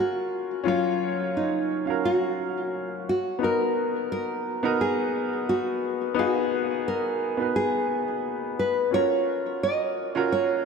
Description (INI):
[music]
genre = chillout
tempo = 87 BPM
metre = 4/4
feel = swing 56% on 16ths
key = unclear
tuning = A4 = 438 Hz
[part]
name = nylon-string guitar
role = melody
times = 0.0-10.7 s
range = Eb4 to Eb5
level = -26 LUFS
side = right 1 dB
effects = tape echo
[part]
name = warm baby grand piano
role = accompaniment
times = 0.0-10.7 s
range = Gb3 to F5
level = -27 LUFS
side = moving between left 7 dB and right 6 dB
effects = auto-pan, tape echo
[sound]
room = wet plate reverb, RT60 3.4 s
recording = dreamy mix soaked in reverb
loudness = -23 LUFS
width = side -5 dB against mid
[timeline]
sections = 0.0-10.7 A section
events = none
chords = 0.0 Ebm7; 3.1 Abm7; 8.9 Ebm7